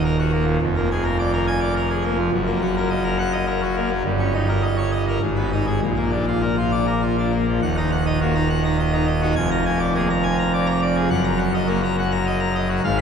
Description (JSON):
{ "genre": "classical, organ toccata", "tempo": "104 BPM", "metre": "3/4", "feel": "straight", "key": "Eb minor", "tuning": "A4 = 440 Hz", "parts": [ { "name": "pipe organ, full organ", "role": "solo", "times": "0.0-13.0 s", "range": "D#1 to Bb5", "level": "-18 LUFS", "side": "equal", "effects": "none" } ], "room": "wet cathedral reverb, RT60 5.2 s", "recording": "heard from further back in the room", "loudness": "-18 LUFS", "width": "side -6 dB against mid", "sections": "0.0-7.6 A section; 7.6-13.0 B section", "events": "none", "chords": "0.0 D#m; 0.6 Bb7/F; 2.3 Ebm/Gb; 4.1 Eb7/G; 5.2 Abm; 5.8 Bb; 7.6 Ebm; 9.4 Bb7/F; 11.1 Ebm/Gb" }